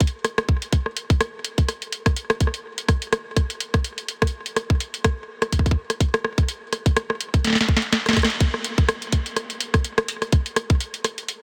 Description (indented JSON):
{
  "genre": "IDM",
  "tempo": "125 BPM",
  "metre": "4/4",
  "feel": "swing 56% on 16ths",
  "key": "none",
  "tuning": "none",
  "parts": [
    { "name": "booming analog drum machine", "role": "drums", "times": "0.0-11.4 s", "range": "hi-hat, rim click, snare drum", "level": "-26 LUFS", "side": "equal", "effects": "delay" },
    { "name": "electronic kick drum", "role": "drums", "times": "0.0-10.8 s", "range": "none", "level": "-21 LUFS", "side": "equal", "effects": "none" }
  ],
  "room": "light reverb",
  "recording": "dense, heavily limited modern master",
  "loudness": "-23 LUFS",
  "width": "mono",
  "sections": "0.0-8.4 A section; 8.4-11.4 B section",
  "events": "drum fill 7.4-8.4; band accent 8.2",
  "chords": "none"
}